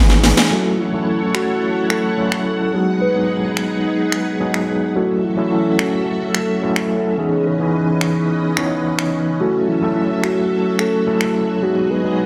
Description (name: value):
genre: nu-disco, nu disco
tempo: 108 BPM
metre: 4/4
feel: straight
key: F# dorian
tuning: A4 = 443 Hz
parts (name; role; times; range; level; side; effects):
- overdriven tine electric piano; accompaniment; 0.0-12.3 s; E3 to C#5; -21 LUFS; equal; fast tremolo, low-pass filter
- string machine, full ensemble; sustained chords; 0.0-12.3 s; E3 to C#6; -26 LUFS; equal; phaser, ensemble chorus
- house drum kit; drums; 0.1-11.3 s; finger snaps, hi-hat, snare drum; -22 LUFS; equal; none
- congas; percussion; 0.1-0.5 s; none; -27 LUFS; equal; none
- soft octave-layered synth lead; melody; 0.5-12.3 s; E4 to C#5; -24 LUFS; equal; chorus, phaser, cassette tape
room: moderate echo chamber reverb, RT60 1.6 s, digital ambience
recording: none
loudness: -18 LUFS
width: mono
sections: 0.5-12.3 A section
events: drum fill 0.1-0.5; band accent 0.4; filter sweep on tine electric piano 0.5-12.3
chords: 0.0 C#m9; 0.5 F#m7; 2.7 G#m7; 5.0 F#m7; 7.2 C#m9; 9.4 F#m7; 11.6 G#m7